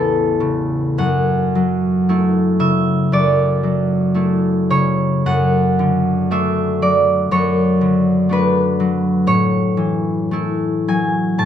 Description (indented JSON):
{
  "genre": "classical, solo harp piece",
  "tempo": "50-62 BPM",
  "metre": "4/4",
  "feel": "rubato",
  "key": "unclear",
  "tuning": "A4 = 438 Hz",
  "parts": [
    { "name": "concert harp", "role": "solo", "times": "0.0-11.5 s", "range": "A1 to A5", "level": "-14 LUFS", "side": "equal", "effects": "none" }
  ],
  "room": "little or no reverb",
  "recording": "close, detailed microphones",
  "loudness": "-14 LUFS",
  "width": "side -9 dB against mid",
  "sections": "0.0-11.5 A section",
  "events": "none",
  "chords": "0.0 Aadd9; 1.0 F#m7; 5.3 Bm7/F#; 9.3 A6"
}